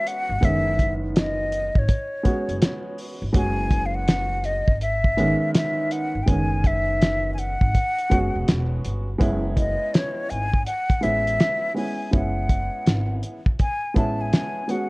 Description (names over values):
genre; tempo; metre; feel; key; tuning
hip hop, jazz-hop; 82 BPM; 4/4; swing 64% on 16ths; unclear; A4 = 440 Hz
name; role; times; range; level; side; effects
breathy mellow silver concert flute; melody; 0.0-14.9 s; C#5 to A5; -26 LUFS; left 1 dB; none
warm upright piano; accompaniment; 0.0-14.9 s; D#3 to F#4; -27 LUFS; right 1 dB; none
cloth-damped thuddy drum kit; drums; 0.1-14.9 s; hi-hat, kick drum, snare drum; -20 LUFS; equal; vintage 12-bit sampler grit
upright bass; bass; 0.3-14.3 s; E1 to A1; -27 LUFS; equal; none
room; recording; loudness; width
light reverb, studio reverb; worn, warbling old tape, cassette tape, warbly pitch drift; -20 LUFS; side -24 dB against mid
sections
0.0-9.2 A section; 9.2-14.9 B section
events
flute solo 9.2-14.9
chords
0.0 F#9sus4